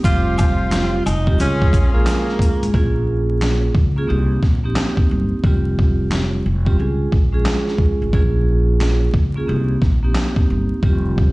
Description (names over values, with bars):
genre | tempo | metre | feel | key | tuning
hip hop, boom-bap hip-hop | 89 BPM | 4/4 | swing 63% on 16ths | Bb dorian | A4 = 440 Hz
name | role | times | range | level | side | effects
breathy tenor saxophone | melody | 0.0-2.7 s | Bb3 to F4 | -24 LUFS | equal | high-pass filter, low-pass filter
vibraphone with medium mallets | accompaniment | 0.0-11.3 s | G3 to Ab4 | -22 LUFS | right 2 dB | high-pass filter, low-pass filter
mellow horn section | stabs | 0.0-2.4 s | Db4 to C5 | -30 LUFS | left 3 dB | high-pass filter, low-pass filter, analog delay
upright bass | bass | 0.0-11.3 s | F1 to Db2 | -19 LUFS | equal | none
dusty soul sampler-style drum kit | drums | 0.0-11.3 s | handclaps, hi-hat, kick drum, snare drum | -17 LUFS | equal | none
egg shaker and woodblock | percussion | 0.0-2.6 s | none | -32 LUFS | left 4 dB | none
room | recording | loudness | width
light reverb | played on a big sound system in a bare room, large studio reverb, vinyl crackle, nothing above 10.9 kHz | -15 LUFS | side -21 dB against mid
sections
0.0-2.7 A section; 2.7-11.3 B section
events
hi-hats muted 2.7-11.3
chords
0.0 Fsus2; 1.4 Db; 2.7 Bbm7; 4.1 Cm7; 5.4 Fsus2; 6.8 Db; 8.1 Bbm7; 9.5 Cm7